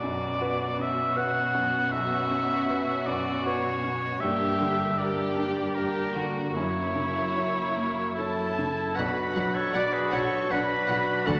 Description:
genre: cinematic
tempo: 78 BPM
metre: 3/4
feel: rubato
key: B harmonic minor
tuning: A4 = 439 Hz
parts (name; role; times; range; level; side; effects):
- muted studio violin section; melody; 0.0-11.3 s; E4 to F#5; -37 LUFS; equal; none
- clear oboe; second line; 0.0-11.4 s; E4 to F#5; -32 LUFS; equal; none
- muted studio violin section; second line; 0.0-11.4 s; A#3 to D6; -37 LUFS; equal; none
- clear baby grand piano; accompaniment; 0.0-11.4 s; B1 to F#5; -35 LUFS; equal; none
- muted studio viola section; accompaniment; 0.0-11.3 s; F#3 to D4; -40 LUFS; equal; none
- muted studio cello section; bass; 0.0-11.4 s; F#2 to F#4; -38 LUFS; equal; none
- clear clarinet; second line; 8.2-11.4 s; A4 to D5; -32 LUFS; equal; none
- mellow French horn section; sustained chords; 9.0-11.4 s; F#3 to D4; -38 LUFS; equal; none
- muted studio double bass section; bass; 9.0-11.3 s; B1 to D2; -40 LUFS; equal; none
room: wet scoring stage reverb, RT60 1.8 s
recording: none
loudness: -27 LUFS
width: mono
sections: 0.0-9.0 A section; 9.0-11.4 B section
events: none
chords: 0.0 Bmadd9; 4.2 Gm; 6.6 F#7; 9.0 Bm

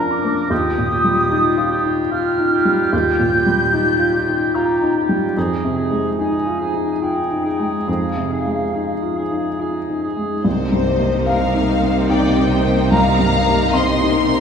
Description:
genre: cinematic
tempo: 73 BPM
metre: 3/4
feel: rubato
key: C minor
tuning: A4 = 439 Hz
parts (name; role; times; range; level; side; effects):
- clear clarinet; second line; 0.0-10.4 s; D4 to F4; -24 LUFS; right 1 dB; none
- mellow hollow flute section; second line; 0.0-9.6 s; F5 to G6; -22 LUFS; equal; none
- warm oboe; second line; 0.0-10.4 s; G4 to Bb4; -26 LUFS; right 2 dB; none
- felt-muted upright piano; accompaniment; 0.0-14.4 s; Bb1 to C6; -19 LUFS; left 1 dB; none
- warm studio violin section; melody; 10.4-14.4 s; Bb4 to F5; -22 LUFS; left 4 dB; none
- clear studio cello section; bass; 10.4-14.4 s; C3; -23 LUFS; right 2 dB; none
- rich studio viola section; accompaniment; 10.5-14.4 s; Bb3 to Eb4; -22 LUFS; left 3 dB; none
- rich studio double bass section; bass; 10.5-14.4 s; C2; -21 LUFS; right 3 dB; none
- warm studio violin section; second line; 11.3-14.4 s; F5 to C6; -22 LUFS; left 1 dB; none
room: wet scoring stage reverb, RT60 1.8 s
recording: heard from further back in the room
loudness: -15 LUFS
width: side -7 dB against mid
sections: 0.0-10.4 A section; 10.4-14.4 A section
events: none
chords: 0.0 Bb; 0.5 Ebadd9; 5.4 Fm7; 10.4 Cm7

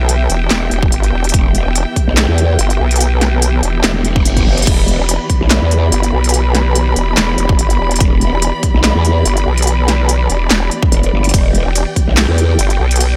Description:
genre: heavy wobble dubstep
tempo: 144 BPM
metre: 4/4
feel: swing 54% on 16ths, half-time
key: E minor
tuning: A4 = 440 Hz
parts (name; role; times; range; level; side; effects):
- dark studio string section; sustained chords; 0.0-13.2 s; E3 to B5; -23 LUFS; equal; sidechain pumping
- vowel-sweep wobble bass; bass; 0.0-13.2 s; E1 to B1; -16 LUFS; equal; chorus, overdrive
- big-room dance drum kit; drums; 0.1-13.1 s; crash cymbal, handclaps, hi-hat, ride cymbal, snare drum; -20 LUFS; equal; none
- growl bass; bass; 0.5-12.6 s; E1 to E2; -16 LUFS; equal; chorus, overdrive
- electronic kick drum; drums; 0.8-12.1 s; none; -16 LUFS; equal; none
- reverse cymbal; sound effects; 4.0-4.7 s; none; -27 LUFS; equal; none
room: digital ambience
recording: none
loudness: -13 LUFS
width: mono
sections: 0.0-13.2 A section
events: reverse cymbal 4.0-4.7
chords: 0.0 Em

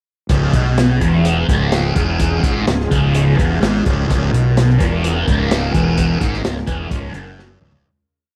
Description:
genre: psychedelic rock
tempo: 127 BPM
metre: 4/4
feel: straight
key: Db mixolydian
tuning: A4 = 442 Hz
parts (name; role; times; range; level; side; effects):
- string machine, violas; sustained chords; 0.3-7.8 s; Ab3 to Bb4; -30 LUFS; equal; ensemble chorus
- thick fuzz guitar; riff; 0.3-7.8 s; Db2 to Cb3; -19 LUFS; equal; distortion, phaser
- fuzz fingered electric bass; bass; 0.3-7.8 s; Db1 to Cb2; -23 LUFS; equal; overdrive
- crunchy breakbeat drum kit; drums; 0.3-7.8 s; hi-hat, kick drum, snare drum, toms; -22 LUFS; equal; none
room: studio reverb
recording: none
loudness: -16 LUFS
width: mono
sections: 0.3-7.8 groove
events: fade-out 6.0-7.8; drum fill 7.4-7.8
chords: 0.3 Db

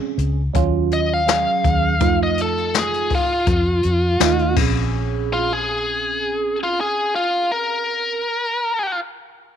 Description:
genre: straight-eighth soul blues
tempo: 82 BPM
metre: 4/4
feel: swing 53% on 16ths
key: Bb minor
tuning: A4 = 441 Hz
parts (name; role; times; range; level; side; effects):
- tine electric piano; accompaniment; 0.0-8.3 s; Gb3 to Eb5; -24 LUFS; right 14 dB; phaser
- vintage muted fingered electric bass; bass; 0.2-8.2 s; Bb1 to F2; -22 LUFS; left 1 dB; none
- jazz brush drum kit; drums; 0.2-4.7 s; crash cymbal, hi-hat, kick drum, snare drum; -22 LUFS; left 4 dB; none
- biting lead guitar; melody; 0.9-9.0 s; F4 to F5; -20 LUFS; left 1 dB; overdrive, slapback echo
room: light reverb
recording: 1960s-style stereo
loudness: -17 LUFS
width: side -9 dB against mid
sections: 0.0-4.9 A section; 4.9-7.9 B section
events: tine electric piano fill 3.8-4.9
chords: 0.0 Bbm9 (rootless); 0.5 Ebm9; 2.0 F7; 4.6 Bbm9

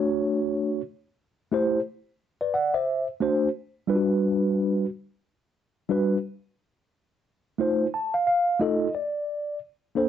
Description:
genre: hip hop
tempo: 89 BPM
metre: 4/4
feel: swing 62% on 16ths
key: unclear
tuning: A4 = 441 Hz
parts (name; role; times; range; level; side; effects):
- mellow tine electric piano; solo; 0.0-10.1 s; G3 to A5; -22 LUFS; equal; medium stereo tremolo
room: wet studio reverb, RT60 0.5 s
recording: dark, warm production, nothing above 7.9 kHz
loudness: -23 LUFS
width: side -10 dB against mid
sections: 0.0-10.1 A section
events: tine electric piano fill 7.6-9.6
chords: 0.0 Dmaj7; 1.5 Am7; 2.9 D7; 4.2 Gmaj7; 6.9 F7

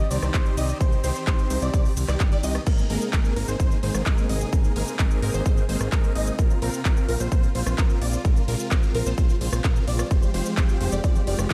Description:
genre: EDM, festival progressive house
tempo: 129 BPM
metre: 4/4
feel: straight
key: unclear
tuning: A4 = 440 Hz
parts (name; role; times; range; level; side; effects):
- trumpet with cup mute; melody; 0.0-2.2 s; C5 to Eb5; -37 LUFS; equal; tape echo
- dark studio string section; sustained chords; 0.0-11.5 s; C3 to Ab4; -37 LUFS; equal; sidechain pumping
- unison pluck; arpeggios; 0.0-11.5 s; Bb4 to Eb5; -37 LUFS; equal; ensemble chorus, sidechain pumping, tape echo
- big supersaw lead; riff; 0.0-11.5 s; Ab3 to Eb5; -34 LUFS; equal; phaser, sidechain pumping, tape echo
- fat analog bass; bass; 0.0-11.5 s; F1 to Bb2; -29 LUFS; equal; sidechain pumping
- big-room dance drum kit; drums; 0.1-11.5 s; crash cymbal, handclaps, hi-hat, ride cymbal, rim click, shaker; -35 LUFS; equal; none
- electronic kick drum; drums; 0.3-11.5 s; none; -23 LUFS; equal; none
room: digital ambience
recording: dark, warm production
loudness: -23 LUFS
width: mono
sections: 0.0-2.7 A section; 2.7-11.5 A section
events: drop 0.0-2.7, 2.7-11.5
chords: 0.0 Cm; 2.7 Abadd9; 6.4 Bbsus2; 10.1 Fmadd9

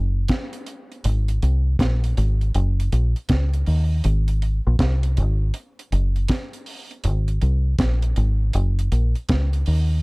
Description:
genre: roots reggae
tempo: 80 BPM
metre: 4/4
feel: swing 64% on 16ths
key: Ab mixolydian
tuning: A4 = 440 Hz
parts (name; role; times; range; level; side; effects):
- deep dub fingered electric bass; bass; 0.0-10.0 s; Gb1 to Eb2; -19 LUFS; equal; none
- deep reggae drum kit; drums; 0.3-9.9 s; hi-hat, kick drum, snare drum; -25 LUFS; equal; none
room: little or no reverb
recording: dark, warm production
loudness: -19 LUFS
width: side -30 dB against mid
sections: 0.0-10.0 A section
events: none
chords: none

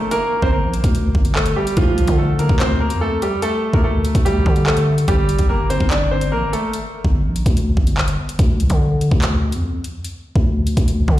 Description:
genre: hip hop, drill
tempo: 145 BPM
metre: 4/4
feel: half-time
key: G minor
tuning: A4 = 440 Hz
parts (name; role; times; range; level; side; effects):
- clear concert grand piano; melody; 0.0-6.7 s; F3 to D5; -20 LUFS; right 1 dB; low-pass filter, digital delay
- downlifter; sound effects; 0.0-1.8 s; none; -35 LUFS; left 1 dB; none
- drill drum kit; drums; 0.1-11.2 s; handclaps, hi-hat, kick drum; -19 LUFS; equal; none
- growling 808-style bass; bass; 0.4-11.2 s; G1 to D3; -18 LUFS; equal; none
room: digital ambience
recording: played on a big sound system in a bare room, large studio reverb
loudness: -15 LUFS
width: side -14 dB against mid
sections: 0.0-11.2 A section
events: none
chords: 0.0 Gm; 1.8 Dm; 5.1 Gm; 8.4 N.C.

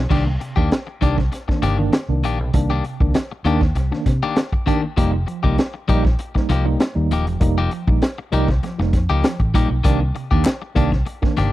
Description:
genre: funk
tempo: 99 BPM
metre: 4/4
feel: straight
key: unclear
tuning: A4 = 440 Hz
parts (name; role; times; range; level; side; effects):
- vintage muted fingered electric bass; bass; 0.0-11.5 s; Eb1 to C3; -20 LUFS; equal; none
- clean electric guitar; accompaniment; 0.1-11.5 s; Eb3 to G4; -25 LUFS; left 6 dB; spring reverb
- mellow tine electric piano; stabs; 0.1-11.5 s; C3 to Eb4; -24 LUFS; right 3 dB; medium stereo tremolo
- crunchy breakbeat drum kit; drums; 0.1-11.5 s; crash cymbal, hi-hat, kick drum, snare drum; -19 LUFS; equal; none
- group handclap; percussion; 10.5-10.6 s; none; -30 LUFS; left 4 dB; none
room: little or no reverb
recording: dry, close 1970s-style studio recording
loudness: -17 LUFS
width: side -15 dB against mid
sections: 0.1-11.5 A section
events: none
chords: 0.1 Cm9; 5.0 F9sus4; 9.8 Cm9

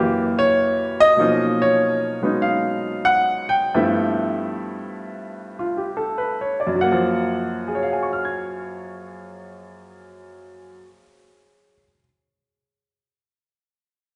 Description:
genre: solo jazz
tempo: 68-98 BPM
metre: 4/4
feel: swing 69% on 8ths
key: F# major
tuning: A4 = 439 Hz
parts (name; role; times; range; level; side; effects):
- clear baby grand piano; solo; 0.0-12.0 s; F#2 to G#6; -21 LUFS; equal; none
room: wet concert hall reverb, RT60 2.0 s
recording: recorded in a church or concert hall, nothing above 10.7 kHz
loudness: -21 LUFS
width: mono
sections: 0.0-1.2 A section; 1.2-6.8 B section; 6.8-10.3 C section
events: slowing down 1.2-6.8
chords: 0.0 F#7b9; 1.2 Bmaj9#11; 3.7 G13; 6.8 F#maj7

